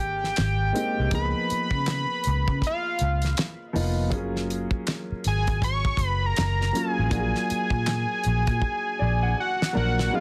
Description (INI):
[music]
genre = R&B, neo-soul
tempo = 80 BPM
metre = 4/4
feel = swing 61% on 16ths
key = unclear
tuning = A4 = 440 Hz
[part]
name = fat analog lead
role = melody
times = 0.0-10.2 s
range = F5 to Db6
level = -30 LUFS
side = equal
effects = chorus, plate reverb
[part]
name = warm baby grand piano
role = accompaniment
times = 0.0-10.2 s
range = F3 to Bb5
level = -33 LUFS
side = equal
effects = plate reverb
[part]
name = vintage muted fingered electric bass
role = bass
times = 0.0-10.1 s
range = F1 to Db3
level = -28 LUFS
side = equal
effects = none
[part]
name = damped 70s drum kit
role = drums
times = 0.2-10.1 s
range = handclaps, hi-hat, kick drum, snare drum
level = -30 LUFS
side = equal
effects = none
[sound]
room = light reverb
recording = dense, heavily limited modern master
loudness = -25 LUFS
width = mono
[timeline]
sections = 0.0-10.1 A section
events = drum fill 8.6-10.1; grand piano fill 8.6-10.1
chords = 0.0 Abmaj7; 1.1 Db13; 4.1 Gbmaj9; 7.1 Bb7b13